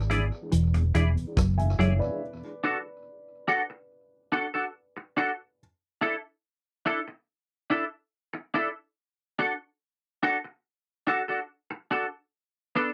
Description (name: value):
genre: lovers rock reggae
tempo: 71 BPM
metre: 4/4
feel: straight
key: unclear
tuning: A4 = 440 Hz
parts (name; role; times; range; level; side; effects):
- dark baby grand piano; accompaniment; 0.0-2.4 s; B3 to G#5; -39 LUFS; equal; none
- vintage muted fingered electric bass; bass; 0.0-2.0 s; E1 to G#1; -26 LUFS; equal; none
- mellow tonewheel organ; accompaniment; 0.1-2.1 s; E2 to D4; -39 LUFS; equal; chorus vibrato, slow rotary speaker, tape echo
- semi-hollow electric guitar; stabs; 0.1-12.9 s; B3 to D5; -28 LUFS; equal; analog chorus
- vintage drum kit; drums; 0.1-2.0 s; hi-hat, kick drum, rim click; -32 LUFS; equal; tape echo
- mellow electric guitar; riff; 0.5-1.9 s; E3 to F#3; -29 LUFS; equal; subtle chorus
room: little or no reverb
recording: dry, close 1970s-style studio recording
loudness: -28 LUFS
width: mono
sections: 0.0-2.2 A section; 2.2-12.9 B section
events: none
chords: 0.0 E7; 2.2 D; 5.6 E7sus4; 9.0 D; 12.3 Bm7